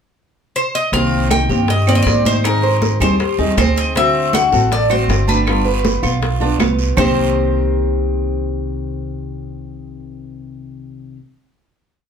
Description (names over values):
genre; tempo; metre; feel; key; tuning
latin, Cuban son and guajira; 159 BPM; 4/4; straight; C minor; A4 = 443 Hz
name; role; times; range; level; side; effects
Cuban tres; melody; 0.6-11.2 s; Bb4 to G5; -19 LUFS; left 2 dB; plate reverb
nylon-string guitar; accompaniment; 0.9-11.2 s; C3 to Ab4; -22 LUFS; left 3 dB; none
Cuban tres; arpeggios; 0.9-11.2 s; B3 to C5; -22 LUFS; right 2 dB; none
upright bass; bass; 0.9-11.1 s; G1 to Ab2; -19 LUFS; right 1 dB; none
bongos; percussion; 0.9-7.1 s; none; -26 LUFS; left 4 dB; none
congas; percussion; 0.9-7.1 s; none; -22 LUFS; right 3 dB; none
guiro; percussion; 0.9-7.1 s; none; -30 LUFS; right 5 dB; none
claves; percussion; 1.3-7.1 s; none; -28 LUFS; right 5 dB; none
room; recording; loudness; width
wet small room ambience, RT60 0.5 s; heard from further back in the room; -14 LUFS; side -7 dB against mid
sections
0.0-0.9 pickup bar; 0.9-7.0 verse; 7.0-10.0 final chord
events
none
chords
0.0 N.C.; 0.9 Cm7; 2.4 Abmaj7; 4.0 D7; 5.5 G7; 7.0 Cm7